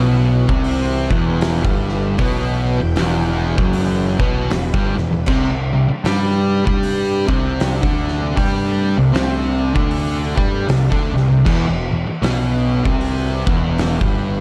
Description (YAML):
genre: stoner and doom metal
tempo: 78 BPM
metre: 4/4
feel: swing 60% on 8ths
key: E minor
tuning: A4 = 441 Hz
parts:
  - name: string machine, violins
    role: sustained chords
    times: 0.0-14.4 s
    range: C3 to G5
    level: -33 LUFS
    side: equal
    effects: none
  - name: fuzz guitar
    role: riff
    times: 0.0-14.4 s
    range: E2 to G4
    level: -23 LUFS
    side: equal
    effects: distortion
  - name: fuzz guitar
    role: riff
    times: 0.0-14.4 s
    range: E2 to G4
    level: -24 LUFS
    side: equal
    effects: distortion
  - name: fuzz picked electric bass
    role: bass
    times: 0.0-14.4 s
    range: E1 to G2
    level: -24 LUFS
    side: equal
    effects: overdrive
  - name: oversized low-tuned drum kit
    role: drums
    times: 0.5-14.2 s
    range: crash cymbal, hi-hat, kick drum, snare drum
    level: -24 LUFS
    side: equal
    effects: none
room: light reverb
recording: dark, warm production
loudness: -18 LUFS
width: mono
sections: 0.0-14.4 A section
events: none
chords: 0.0 Em; 5.3 C5; 11.5 Em